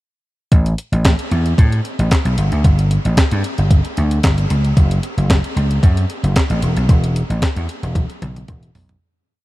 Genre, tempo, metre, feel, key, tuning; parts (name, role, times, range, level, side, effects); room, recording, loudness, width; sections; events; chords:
early-eighties boogie funk; 113 BPM; 4/4; straight; A4 = 441 Hz
vintage slap bass; bass; 0.5-9.0 s; E1 to A2; -16 LUFS; equal
clean 12-bit digital drum machine; drums; 0.5-9.0 s; handclaps, hi-hat, kick drum, snare drum, toms; -16 LUFS; equal
light reverb; -14 LUFS; side -18 dB against mid
0.5-9.0 verse
fade-out 6.9-9.0; drum fill 8.0-9.0